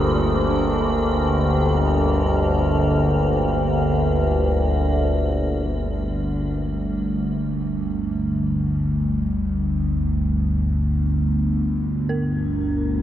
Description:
dark ambient drone; free time; G minor; A4 = 436 Hz
dark analog pad; sustained chords; 0.0-5.7 s; G4 to C5; -26 LUFS; left 1 dB; chorus, shimmer reverb
dark detuned synth bell; arpeggios; 0.0-13.0 s; D4 to Bb4; -34 LUFS; right 2 dB; chorus, tremolo, diffuse ambient delay, shimmer reverb
overtone-sweeping drone; drone; 0.0-13.0 s; G1 to D2; -20 LUFS; equal; chorus, built-in reverb
icy glass pad; texture; 0.0-5.7 s; Bb3; -30 LUFS; right 4 dB; chorus, built-in reverb, shimmer reverb
moderate huge ambient reverb, RT60 8.7 s; dark, warm production; -19 LUFS; side -12 dB against mid
0.0-5.7 A section; 5.7-13.0 B section
0.0 Gmadd9; 5.7 Gm
free time

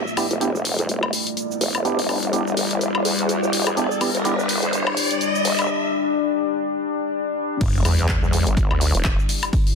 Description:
bass house; 125 BPM; 4/4; swing 57% on 16ths; E minor; A4 = 445 Hz
deep dark ambient pad; sustained chords; 0.0-9.8 s; G3 to D5; -24 LUFS; left 3 dB; chorus, built-in reverb, sidechain pumping
percussive organ stab; stabs; 0.0-4.3 s; B3 to G4; -26 LUFS; right 4 dB; chorus, sidechain pumping, dub echo
vowel-sweep wobble bass; bass; 0.0-9.2 s; E1 to E2; -23 LUFS; equal; chorus, overdrive, sidechain pumping, high-pass filter
riser and sub drop; sound effects; 0.0-9.5 s; -27 LUFS; equal
house drum kit; drums; 0.1-9.8 s; cabasa, crash cymbal, handclaps, hi-hat, woodblock; -25 LUFS; left 3 dB
breakbeat sampler-style drum kit; drums; 7.6-9.7 s; hi-hat, snare drum; -39 LUFS; right 2 dB
electronic kick drum; drums; 7.6-9.6 s; -21 LUFS; equal
light reverb; dense, heavily limited modern master, high-pass filter; -19 LUFS; side -5 dB against mid
0.0-7.6 A section; 7.6-9.8 B section
build-up 0.0-7.6; riser 0.0-5.7; filter sweep on synth stab 0.0-7.6; filter sweep 0.0-7.6; break 5.7-7.6; drop 7.6-9.8; impact 7.6-9.5
0.0 Em7
0.41 0.89 1.37 | 1.85 2.33 2.81 3.29 | 3.77 4.25 4.73 5.21 | 5.69 6.17 6.65 7.13 | 7.61 8.09 8.57 9.05 | 9.53

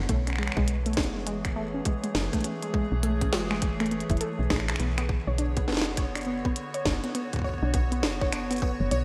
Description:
IDM; 102 BPM; 4/4; swing 62% on 16ths; B dorian; A4 = 440 Hz
warbly tape-like pad; sustained chords; 0.0-9.0 s; D3 to C#5; -37 LUFS; equal; chorus, built-in reverb
woody FM bass; bass; 0.0-9.0 s; F#1 to B1; -32 LUFS; equal; tube saturation
warbly dusty pluck; arpeggios; 0.1-9.0 s; G#3 to C#5; -35 LUFS; equal; chorus, digital delay
electronic kick drum; drums; 0.1-8.8 s; -31 LUFS; equal
glitchy drum kit; drums; 0.1-9.0 s; finger snaps, hi-hat, snare drum; -34 LUFS; equal; gated reverb, digital delay
pulsing gated texture; texture; 5.4-9.0 s; C#5; -44 LUFS; equal; chorus, built-in reverb
moderate lush hall reverb, RT60 1.9 s; bright 1980s-style digital production; -28 LUFS; mono
0.0-9.0 A section
0.1 Amaj7; 4.8 Bmadd9
| 0.09 0.68 1.27 1.85 | 2.44 3.03 3.62 4.21 | 4.80 5.38 5.97 6.56 | 7.15 7.74 8.33 8.91

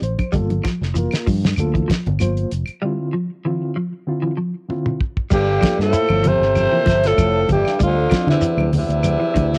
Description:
afrobeat; 96 BPM; 4/4; straight; G dorian; A4 = 444 Hz
mellow reed electric piano; accompaniment; 0.0-8.7 s; D3 to C5; -28 LUFS; equal; medium tremolo, cassette tape, plate reverb
fingered electric bass; bass; 0.0-9.6 s; F1 to D3; -23 LUFS; equal
damped 70s drum kit; drums; 0.0-9.6 s; crash cymbal, hi-hat, kick drum, snare drum, toms; -25 LUFS; equal; cassette tape
shekere; percussion; 0.0-9.5 s; -28 LUFS; equal
claves; percussion; 0.2-9.2 s; -36 LUFS; equal
congas; percussion; 0.2-9.5 s; -27 LUFS; equal
clean electric guitar; arpeggios; 0.3-9.5 s; D3 to E4; -26 LUFS; equal; ensemble chorus, cassette tape
breathy alto saxophone; melody; 5.3-9.6 s; E4 to C5; -21 LUFS; equal; cassette tape, plate reverb
breathy tenor saxophone; second line; 5.3-9.6 s; C3 to A3; -31 LUFS; equal; cassette tape
muted trombone section; second line; 5.3-9.6 s; E2 to C3; -26 LUFS; equal; cassette tape, plate reverb
light reverb; home recording on cassette; -19 LUFS; mono
0.0-5.3 A section; 5.3-9.6 B section
reed electric piano fill 0.0-0.3; break 2.8-5.3; drum fill 4.7-5.3
0.3 Gm9; 2.8 Dm7; 5.3 Gm9; 7.8 Dm7
| 0.33 0.95 1.58 2.20 | 2.83 3.45 4.07 4.69 | 5.32 5.94 6.56 7.18 | 7.81 8.43 9.05

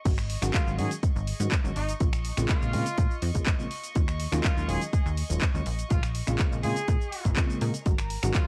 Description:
filtered disco house; 123 BPM; 4/4; straight; Bb minor; A4 = 437 Hz
rich studio violin section; sustained chords; 0.0-8.5 s; Bb4 to Db6; -44 LUFS; equal; sidechain pumping, low-pass filter
tine electric piano; accompaniment; 0.1-8.5 s; Db3 to Bb4; -35 LUFS; equal; phaser, sidechain pumping, low-pass filter
plucky analog bass; bass; 0.1-8.3 s; Eb1 to Bb2; -32 LUFS; equal; tube saturation, sidechain pumping, low-pass filter
electronic kick drum; drums; 0.1-8.4 s; -28 LUFS; equal; overdrive
house drum kit; drums; 0.1-8.4 s; crash cymbal, finger snaps, handclaps, hi-hat, shaker; -37 LUFS; equal; overdrive, sidechain pumping on hats, sidechain pumping on perc, sidechain pumping on cymbals
bright horn section; melody; 0.5-8.5 s; Eb4 to Ab4; -39 LUFS; equal; vintage 12-bit sampler grit, sidechain pumping, low-pass filter
little or no reverb; dry, gritty hardware recording, cassette tape; -27 LUFS; mono
0.1-8.5 A section
drop 0.1-8.5
0.1 Ab7sus4; 2.0 Bbm9; 3.7 Ebm11; 5.7 Bbm9; 7.9 Ab7sus4
| 0.05 0.54 1.03 1.52 | 2.00 2.49 2.98 3.47 | 3.96 4.44 4.93 5.42 | 5.91 6.39 6.88 7.37 | 7.86 8.35

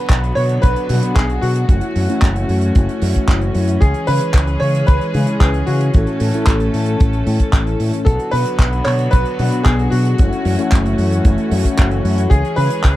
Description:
italo disco; 113 BPM; 4/4; straight; F# minor; A4 = 440 Hz
bright grand piano; melody; 0.0-13.0 s; F#4 to C#5; -22 LUFS; equal; tape echo
clear studio string section; sustained chords; 0.0-13.0 s; D3 to A4; -23 LUFS; equal
fingered electric bass with an envelope filter; bass; 0.1-13.0 s; F#1 to C#3; -18 LUFS; equal
damped 70s drum kit; drums; 0.1-13.0 s; handclaps, hi-hat; -26 LUFS; right 1 dB; small room ambience
kick drum; drums; 0.1-12.9 s; -12 LUFS; equal; small room ambience
analog synth brass; stabs; 0.9-12.3 s; A2 to B4; -21 LUFS; left 2 dB; chorus, tape echo
little or no reverb; dry, close 1970s-style studio recording, vinyl crackle; -13 LUFS; side -15 dB against mid
0.0-13.0 A section
filter sweep on analog polysynth 0.0-13.0
0.0 Bm; 1.7 F#m7; 3.8 C#m; 5.9 A; 8.1 Bm; 10.2 F#m7; 12.3 C#m
0.10 0.63 1.16 | 1.69 2.22 2.75 3.29 | 3.82 4.35 4.88 5.41 | 5.94 6.47 7.00 7.53 | 8.06 8.60 9.13 9.66 | 10.19 10.72 11.25 11.78 | 12.31 12.84

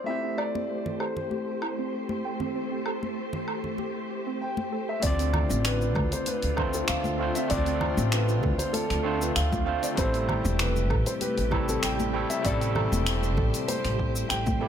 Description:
sunset chillout; 97 BPM; 4/4; straight; D dorian; A4 = 440 Hz
dark concert grand piano; melody; 0.0-14.7 s; A4 to G5; -32 LUFS; left 1 dB; digital delay
overdriven tine electric piano; accompaniment; 0.0-14.7 s; G3 to D5; -32 LUFS; equal; auto-pan
soft string machine; sustained chords; 0.0-14.7 s; C3 to C5; -34 LUFS; equal; ensemble chorus
soft round pluck; arpeggios; 0.1-14.7 s; C4 to G5; -37 LUFS; right 5 dB; chorus, tape echo
deep house drum kit; drums; 0.4-14.6 s; finger snaps, hi-hat, shaker, woodblock; -32 LUFS; equal
congas; percussion; 0.6-14.6 s; -36 LUFS; left 2 dB
upright bass; bass; 5.0-14.7 s; E1 to D2; -28 LUFS; equal
electronic kick drum; drums; 5.0-14.6 s; -30 LUFS; equal
light reverb; -25 LUFS; side -9 dB against mid
0.0-5.0 A section; 5.0-14.7 B section
filter sweep on string machine 0.0-5.0
0.1 Am7; 5.0 Dm7; 10.0 Am7
| 0.08 0.70 1.32 1.93 | 2.55 3.17 3.79 4.41 | 5.03 5.64 6.26 6.88 | 7.50 8.12 8.74 9.36 | 9.97 10.59 11.21 11.83 | 12.45 13.07 13.69 14.30

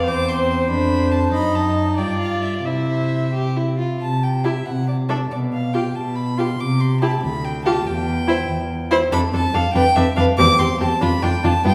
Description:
quick classical-period movement for string quartet; 94 BPM (dotted quarters); 6/8; rubato; C major; A4 = 439 Hz
rich violin; melody; 0.0-11.7 s; C5 to D6; -26 LUFS; equal
rich violin; second line; 0.0-11.7 s; C4 to C5; -26 LUFS; equal
warm viola; accompaniment; 0.0-11.7 s; B3 to E5; -27 LUFS; equal
warm cello; bass; 0.0-11.7 s; D2 to C3; -23 LUFS; equal
wet recital hall reverb, RT60 1.6 s; heard from further back in the room; -20 LUFS; mono
0.0-4.0 A section; 4.0-11.7 B section
0.1 C/E; 0.7 Dm/F; 1.3 F#m6; 2.0 G5; 2.6 C; 4.7 D5/C; 5.3 G7/B; 6.6 C; 7.2 G5/D; 7.9 C/E (rootless); 9.1 Dm; 10.4 C/E; 11.0 Dm/F
| 0.06 0.69 | 1.33 1.99 | 2.65 3.33 | 4.01 4.67 | 5.32 5.96 | 6.60 7.23 | 7.87 8.49 | 9.12 9.75 | 10.38 11.02 | 11.65

